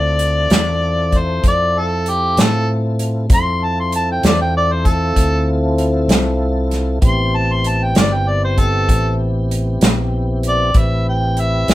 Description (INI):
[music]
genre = slow blues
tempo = 64 BPM (dotted quarters)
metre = 12/8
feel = straight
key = unclear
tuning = A4 = 440 Hz
[part]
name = mellow harmonica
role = melody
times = 0.0-11.7 s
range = G4 to C6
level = -18 LUFS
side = equal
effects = none
[part]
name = mellow tonewheel organ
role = sustained chords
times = 0.0-11.7 s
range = B3 to B4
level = -22 LUFS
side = left 1 dB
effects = overdrive, chorus vibrato, slow rotary speaker
[part]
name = fingered electric bass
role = bass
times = 0.0-11.7 s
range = G1 to A2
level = -19 LUFS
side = equal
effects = none
[part]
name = natural country drum kit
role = drums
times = 0.2-11.7 s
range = hi-hat, kick drum, snare drum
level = -15 LUFS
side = equal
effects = none
[sound]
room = moderate studio reverb, RT60 0.7 s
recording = band playing live in one room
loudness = -14 LUFS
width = side -15 dB against mid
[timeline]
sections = 0.0-11.7 A section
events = harmonica solo 0.0-11.7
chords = 0.0 Dm7; 7.0 Am7